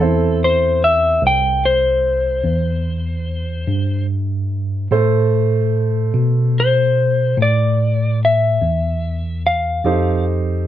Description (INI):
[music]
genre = blues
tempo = 49 BPM (dotted quarters)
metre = 12/8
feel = straight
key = A minor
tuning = A4 = 440 Hz
[part]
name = electric slide guitar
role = melody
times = 0.0-10.2 s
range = A4 to G5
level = -17 LUFS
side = left 2 dB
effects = none
[part]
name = warm baby grand piano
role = accompaniment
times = 0.0-10.7 s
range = A3 to C5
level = -21 LUFS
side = right 5 dB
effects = none
[part]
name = tine electric piano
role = bass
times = 0.0-10.7 s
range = C2 to B2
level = -18 LUFS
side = equal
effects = medium stereo tremolo
[sound]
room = moderate studio reverb, RT60 0.5 s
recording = band playing live in one room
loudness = -15 LUFS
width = side -12 dB against mid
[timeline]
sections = 0.0-10.7 A section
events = none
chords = 0.0 Am; 9.8 F7